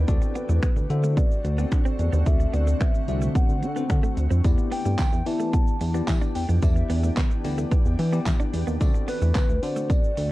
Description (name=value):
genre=dance-pop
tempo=110 BPM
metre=4/4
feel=straight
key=unclear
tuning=A4 = 440 Hz
part: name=shimmering ambient pad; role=sustained chords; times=0.0-10.3 s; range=D3 to G4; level=-35 LUFS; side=right 1 dB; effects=chorus, built-in reverb, sidechain pumping, plate reverb
part: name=direct-recorded clean electric guitar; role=riff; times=0.0-10.2 s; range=A3 to D4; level=-34 LUFS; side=right 5 dB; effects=analog chorus
part: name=chorused synth bass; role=bass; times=0.0-10.3 s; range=C2 to E3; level=-23 LUFS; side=equal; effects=sidechain pumping
part: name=bell-like tine electric piano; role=accompaniment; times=0.1-10.1 s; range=B3 to E5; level=-33 LUFS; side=left 5 dB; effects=phaser, plate reverb
part: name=pop drum kit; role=drums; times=0.1-10.3 s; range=finger snaps, handclaps, hi-hat, kick drum, shaker, snare drum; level=-23 LUFS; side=equal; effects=none
part: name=hollow clarinet-like synth lead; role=melody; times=0.4-10.3 s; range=B4 to A5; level=-33 LUFS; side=left 1 dB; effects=chorus, analog delay, plate reverb
part: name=tambourine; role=percussion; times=4.4-10.3 s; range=none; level=-49 LUFS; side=right 7 dB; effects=none
room=little or no reverb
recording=dark, warm production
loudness=-20 LUFS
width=side -17 dB against mid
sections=0.0-10.3 A section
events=none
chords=0.1 D7; 4.4 Em7; 8.8 D7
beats=| 0.08 0.63 1.17 1.72 | 2.26 2.81 3.35 3.90 | 4.45 4.99 5.54 6.08 | 6.63 7.17 7.72 8.26 | 8.81 9.36 9.90